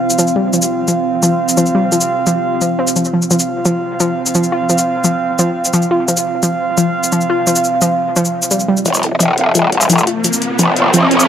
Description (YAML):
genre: dark technical drum and bass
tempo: 173 BPM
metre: 4/4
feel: straight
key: unclear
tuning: A4 = 435 Hz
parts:
  - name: deep dark ambient pad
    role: sustained chords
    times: 0.0-11.3 s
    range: C4 to F5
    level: -22 LUFS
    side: left 1 dB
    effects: chorus, built-in reverb
  - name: mellow brass ensemble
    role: stabs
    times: 0.0-10.9 s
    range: C4 to F5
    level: -18 LUFS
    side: right 4 dB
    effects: low-pass filter, dub echo
  - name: electronic shaker and hi-hat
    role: drums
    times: 0.1-11.3 s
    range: none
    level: -17 LUFS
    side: left 1 dB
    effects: none
  - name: warbly dusty pluck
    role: arpeggios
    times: 0.2-11.1 s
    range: F3 to F4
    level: -16 LUFS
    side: left 1 dB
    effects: chorus, dub echo
  - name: growl bass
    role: bass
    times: 8.9-11.3 s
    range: Eb1 to G1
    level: -12 LUFS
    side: left 1 dB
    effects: chorus, tube saturation, high-pass filter
  - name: riser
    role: sound effects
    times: 9.7-11.3 s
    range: none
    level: -18 LUFS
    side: equal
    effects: none
room: moderate lush hall reverb, RT60 2.1 s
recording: none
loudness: -12 LUFS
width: side -9 dB against mid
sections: 0.0-8.9 A section; 8.9-11.3 B section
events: filter sweep on synth arpeggio sound 0.0-8.9; build-up 8.9-11.3; riser 9.7-11.3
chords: 0.0 F5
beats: 0.19 | 0.53 0.88 1.23 1.57 | 1.92 2.27 2.61 2.96 | 3.31 3.65 4.00 4.35 | 4.70 5.04 5.39 5.74 | 6.08 6.43 6.78 7.12 | 7.47 7.82 8.16 8.51 | 8.86 9.20 9.55 9.90 | 10.24 10.59 10.94